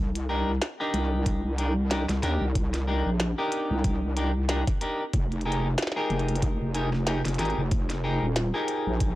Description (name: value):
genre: glitch hop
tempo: 93 BPM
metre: 4/4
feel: swing 57% on 16ths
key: C minor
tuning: A4 = 440 Hz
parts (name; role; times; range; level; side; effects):
- wobble bass; bass; 0.0-9.2 s; Eb1 to Eb2; -27 LUFS; equal; chorus
- warbly tape-like pad; texture; 0.8-9.2 s; C4 to C5; -42 LUFS; left 1 dB; none
- glitchy drum kit; drums; 0.2-9.2 s; hi-hat, snare drum; -31 LUFS; equal; studio reverb
- clean electric guitar; stabs; 0.3-9.2 s; D4 to Bb4; -30 LUFS; left 1 dB; lush chorus, sidechain pumping, analog delay
- electronic kick drum; drums; 1.3-9.2 s; none; -27 LUFS; equal; overdrive, studio reverb
room: little or no reverb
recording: dry, gritty hardware recording, transformer saturation, cassette tape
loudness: -24 LUFS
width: side -16 dB against mid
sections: 0.0-9.2 A section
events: none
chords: 0.0 Cm7; 5.1 Fm11